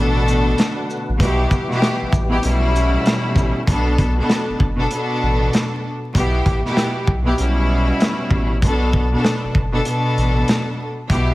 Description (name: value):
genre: hip hop, boom-bap hip-hop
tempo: 97 BPM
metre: 4/4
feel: swing 62% on 16ths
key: B minor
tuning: A4 = 439 Hz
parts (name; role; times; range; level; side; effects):
- rich studio string section; accompaniment; 0.0-11.3 s; B2 to A4; -19 LUFS; equal; cassette tape
- tonewheel organ; sustained chords; 0.0-3.7 s; D3 to G4; -28 LUFS; left 1 dB; chorus vibrato, stopped rotary speaker
- warm sub bass; bass; 0.0-11.3 s; F#1 to B1; -20 LUFS; equal; none
- crunchy breakbeat drum kit; drums; 0.3-11.3 s; hi-hat, kick drum, shaker, snare drum; -20 LUFS; equal; none
room: light reverb, small room ambience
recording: vinyl crackle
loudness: -16 LUFS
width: side -18 dB against mid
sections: 0.0-3.7 A section; 3.7-11.3 B section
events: none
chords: 0.0 Bm7; 1.2 Em/B; 2.4 A7/B; 3.7 Bm7; 6.1 Em; 7.4 A7/B; 8.6 Bm7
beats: 0.58 | 1.20 1.82 2.44 3.06 | 3.67 4.29 4.91 5.53 | 6.15 6.77 7.38 8.00 | 8.62 9.24 9.86 10.48 | 11.10